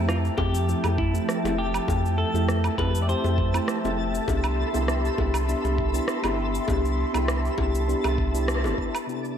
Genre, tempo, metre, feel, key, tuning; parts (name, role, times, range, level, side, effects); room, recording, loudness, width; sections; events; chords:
sunset chillout; 100 BPM; 4/4; straight; C major; A4 = 440 Hz
clean electric guitar; melody; 0.0-3.9 s; E4 to D5; -31 LUFS; left 2 dB; lush chorus, tape echo
mellow FM electric piano; accompaniment; 0.0-9.4 s; C3 to B4; -29 LUFS; moving between left 4 dB and right 6 dB; chorus, auto-pan, vintage 12-bit sampler grit, ping-pong delay
airy breathy pad; sustained chords; 0.0-9.4 s; C3 to C6; -30 LUFS; equal; chorus
warm sub bass; bass; 0.0-8.7 s; F1 to F2; -26 LUFS; equal
twinkling granular texture; texture; 0.0-9.4 s; A4 to D6; -38 LUFS; equal; built-in reverb, ensemble chorus
electronic rim click, shaker and woodblock; drums; 0.1-9.4 s; -32 LUFS; right 1 dB
electronic kick drum; drums; 0.4-8.9 s; -29 LUFS; equal
bongos; percussion; 0.4-8.8 s; -35 LUFS; left 4 dB
moderate plate reverb, RT60 1.9 s, digital ambience; dreamy mix soaked in reverb; -22 LUFS; side -8 dB against mid
0.0-9.1 A section
band accent 8.5-8.8
0.0 Fmaj9; 4.3 Cmaj7